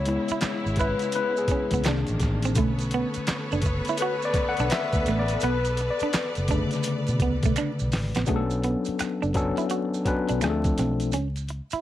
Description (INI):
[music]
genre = R&B, neo-soul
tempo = 84 BPM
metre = 4/4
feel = swing 64% on 16ths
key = B dorian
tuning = A4 = 440 Hz
[part]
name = barky tine electric piano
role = accompaniment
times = 0.0-11.2 s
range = C#3 to F#5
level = -27 LUFS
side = left 4 dB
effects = overdrive, auto-pan
[part]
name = clear studio string section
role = sustained chords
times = 0.0-8.2 s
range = C3 to D5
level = -32 LUFS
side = right 1 dB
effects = none
[part]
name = vintage muted fingered electric bass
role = bass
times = 0.0-11.8 s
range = F#1 to B2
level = -28 LUFS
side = equal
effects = none
[part]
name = semi-hollow electric guitar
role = second line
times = 0.1-11.8 s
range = A3 to F#4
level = -29 LUFS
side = right 6 dB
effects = none
[part]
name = boom bap sampler-style drum kit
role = drums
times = 0.1-11.8 s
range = handclaps, hi-hat, kick drum, rim click, snare drum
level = -28 LUFS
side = equal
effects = none
[part]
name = maracas and finger snaps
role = percussion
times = 0.3-11.8 s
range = none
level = -39 LUFS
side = right 11 dB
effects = none
[sound]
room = light reverb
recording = vinyl crackle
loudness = -23 LUFS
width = side -13 dB against mid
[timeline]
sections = 0.0-8.3 A section; 8.3-11.8 B section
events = tine electric piano solo 0.0-8.3; drum fill 7.6-8.3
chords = 0.0 C#m7; 1.9 Cm9; 2.6 Bm9; 10.4 Dm7; 11.1 N.C.